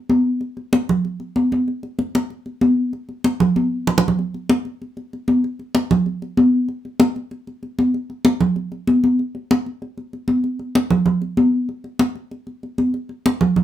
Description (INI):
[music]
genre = latin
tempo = 192 BPM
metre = 4/4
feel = straight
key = none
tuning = none
[part]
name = congas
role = percussion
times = 0.1-13.6 s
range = none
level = -17 LUFS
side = equal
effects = none
[sound]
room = moderate studio ambience, RT60 0.5 s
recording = minimal, uncompressed stereo recording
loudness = -17 LUFS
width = side -12 dB against mid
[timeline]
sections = 0.0-4.2 A section; 4.2-13.6 B section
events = drum fill 3.6-4.2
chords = none